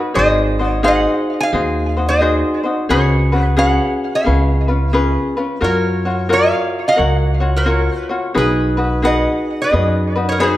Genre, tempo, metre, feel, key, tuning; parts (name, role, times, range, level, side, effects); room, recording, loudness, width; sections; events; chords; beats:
Hawaiian; 88 BPM; 4/4; swing 64% on 8ths; F# major; A4 = 437 Hz
ukulele; accompaniment; 0.0-10.6 s; C#4 to C#5; -18 LUFS; left 2 dB
lap resonator guitar; melody; 0.2-10.6 s; G#4 to G#5; -18 LUFS; right 1 dB; tape echo
upright bass; bass; 0.2-10.6 s; G#1 to F#2; -18 LUFS; equal
moderate recital hall reverb, RT60 1.5 s; dark, warm production; -13 LUFS; side -14 dB against mid
0.0-10.6 A section
0.2 G#7; 2.9 C#7sus4; 4.3 C#7; 5.6 F#maj7; 8.4 B6
| 0.16 0.85 1.53 2.21 | 2.89 3.58 4.26 4.94 | 5.62 6.31 6.99 7.67 | 8.36 9.04 9.72 10.41